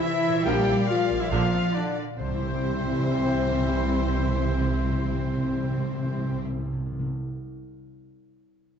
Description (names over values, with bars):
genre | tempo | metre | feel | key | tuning
cinematic, heroic adventure film score | 139 BPM | 4/4 | straight | C mixolydian | A4 = 442 Hz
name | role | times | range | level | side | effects
warm symphonic violin section | melody | 0.0-6.4 s | C5 to G5 | -38 LUFS | left 2 dB | none
clear oboe | second line | 0.0-6.4 s | C5 to G5 | -38 LUFS | right 2 dB | none
mellow clarinet | second line | 0.0-6.4 s | D4 to C5 | -38 LUFS | left 1 dB | none
silver concert flute | second line | 0.0-6.4 s | D5 to C6 | -38 LUFS | left 2 dB | none
warm symphonic violin section | second line | 0.0-6.4 s | C5 to F5 | -37 LUFS | left 3 dB | none
dark French horn section | sustained chords | 0.0-6.4 s | C4 to G4 | -28 LUFS | left 3 dB | none
concert harp | arpeggios | 0.0-7.3 s | Bb2 to G5 | -37 LUFS | left 10 dB | none
rich symphonic cello section | bass | 0.0-6.4 s | D3 to C4 | -32 LUFS | right 1 dB | none
warm symphonic viola section | accompaniment | 0.5-6.4 s | Bb3 to G4 | -37 LUFS | right 2 dB | none
warm trombone section | sustained chords | 0.5-6.4 s | D3 to G3 | -37 LUFS | right 4 dB | none
warm symphonic double bass section | bass | 0.5-6.4 s | Bb1 to C2 | -29 LUFS | right 3 dB | none
timpani | percussion | 2.2-7.1 s | C3 | -31 LUFS | equal | none
room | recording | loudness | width
moderate scoring stage reverb, RT60 1.6 s | dark, warm production, nothing above 7.8 kHz | -23 LUFS | side -7 dB against mid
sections
0.0-2.2 A section; 2.2-5.7 B section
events
none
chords
0.5 Bb; 2.2 C